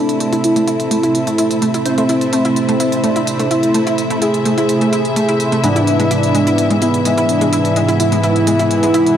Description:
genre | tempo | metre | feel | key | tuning
melodic techno | 127 BPM | 4/4 | straight | A harmonic minor | A4 = 439 Hz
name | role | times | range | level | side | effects
wide unison lead | melody | 0.0-9.2 s | B3 to G#4 | -17 LUFS | equal | tape echo
dark analog pad | sustained chords | 0.0-9.2 s | G#3 to E5 | -25 LUFS | left 1 dB | chorus
analog pluck | arpeggios | 0.0-9.0 s | G#3 to E4 | -21 LUFS | equal | chorus, cassette tape, tape echo
sync-sweep polysynth | stabs | 0.0-9.2 s | G#2 to C5 | -18 LUFS | right 1 dB | chorus, tape echo
swarming drone | drone | 0.1-9.2 s | C3 | -25 LUFS | right 1 dB | built-in reverb
dark studio string section | texture | 0.0-9.2 s | G#3 to E5 | -22 LUFS | left 1 dB | none
electronic hi-hat | drums | 0.1-9.2 s | none | -25 LUFS | right 1 dB | studio reverb
room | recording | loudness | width
light reverb, digital ambience | dry, gritty hardware recording, transformer saturation, cassette tape | -12 LUFS | side -9 dB against mid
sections
0.0-9.2 A section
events
filter sweep on synth arpeggio sound 0.0-9.2; filter sweep on analog synth lead 0.0-9.2; filter sweep on analog polysynth 0.0-9.2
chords
0.0 Am; 5.6 E/G#

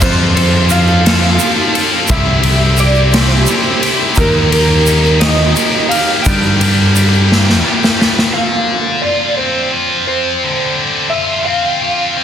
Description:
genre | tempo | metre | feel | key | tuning
indie rock | 58 BPM (dotted quarters) | 6/8 | straight | unclear | A4 = 440 Hz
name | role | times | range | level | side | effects
electric guitar through a small old amp | melody | 0.0-12.2 s | Bb4 to G5 | -18 LUFS | right 2 dB | ensemble chorus, tape echo
glockenspiel with rubber mallets | second line | 0.0-7.6 s | Bb5 to F6 | -26 LUFS | left 2 dB | none
ensemble organ-string | sustained chords | 0.0-8.3 s | G4 to C6 | -26 LUFS | right 1 dB | none
heavy high-gain guitar | riff | 0.0-12.2 s | G2 to A4 | -15 LUFS | left 2 dB | distortion
growling picked electric bass | bass | 0.0-7.6 s | C2 to G2 | -12 LUFS | equal | overdrive
raw garage drum kit | drums | 0.0-8.3 s | crash cymbal, kick drum, ride cymbal, snare drum | -14 LUFS | equal | none
tube shaker | percussion | 0.0-7.9 s | none | -24 LUFS | right 6 dB | none
room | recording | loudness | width
light reverb | dense, heavily limited modern master | -10 LUFS | side -9 dB against mid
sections
0.0-8.3 A section; 8.3-12.2 B section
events
drum fill 7.3-8.3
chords
0.0 F; 2.1 C; 4.2 Eb; 6.3 G; 8.3 Dm7

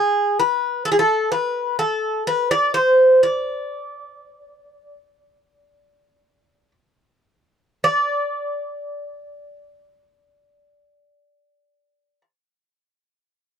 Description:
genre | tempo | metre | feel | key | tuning
greek folk | free time | none | none | unclear | A4 = 435 Hz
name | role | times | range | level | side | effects
Greek bouzouki | solo | 0.0-12.2 s | G#4 to D5 | -17 LUFS | equal | none
room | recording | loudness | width
light reverb | dark, warm production | -17 LUFS | side -8 dB against mid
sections
0.0-7.8 A section; 7.8-12.8 B section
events
slowing down 0.0-7.8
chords
none

